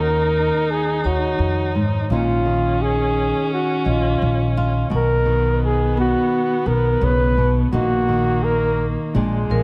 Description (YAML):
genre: acoustic folk-pop ballad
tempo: 85 BPM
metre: 4/4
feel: straight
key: Eb minor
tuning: A4 = 440 Hz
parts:
  - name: breathy flugelhorn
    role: melody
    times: 0.0-9.6 s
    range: F4 to B4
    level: -24 LUFS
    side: equal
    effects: none
  - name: warm viola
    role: second line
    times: 0.0-9.6 s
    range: Ab3 to Eb4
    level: -29 LUFS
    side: equal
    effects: none
  - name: nylon-string guitar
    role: accompaniment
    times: 0.0-9.6 s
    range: Eb2 to F#4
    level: -27 LUFS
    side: equal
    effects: none
  - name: upright bass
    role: bass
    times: 0.0-9.6 s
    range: Bb1 to F2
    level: -24 LUFS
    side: equal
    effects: none
  - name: vibraphone with medium hard mallets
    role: arpeggios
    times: 1.0-9.6 s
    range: B3 to Eb5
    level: -30 LUFS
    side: equal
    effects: none
room: light reverb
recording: close, detailed microphones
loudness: -19 LUFS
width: mono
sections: 0.0-9.6 A section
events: none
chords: 0.0 Ebm9; 2.1 Bb7sus4; 4.9 Bmaj9; 7.7 Ebm/Bb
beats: 0.69 1.39 | 2.10 2.80 3.50 4.21 | 4.91 5.61 6.32 7.02 | 7.73 8.43 9.14